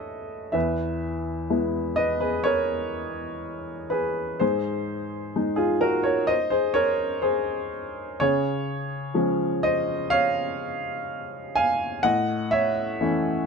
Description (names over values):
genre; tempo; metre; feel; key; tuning
neoclassical minimalist piano; 62 BPM; 4/4; rubato; unclear; A4 = 440 Hz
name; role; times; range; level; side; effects
warm upright piano; solo; 0.0-13.5 s; E2 to Ab5; -23 LUFS; equal; none
room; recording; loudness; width
light reverb; close, detailed microphones; -23 LUFS; side -5 dB against mid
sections
0.0-13.5 A section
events
none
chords
0.0 A; 0.6 E; 4.4 Ab; 8.2 Db; 12.1 A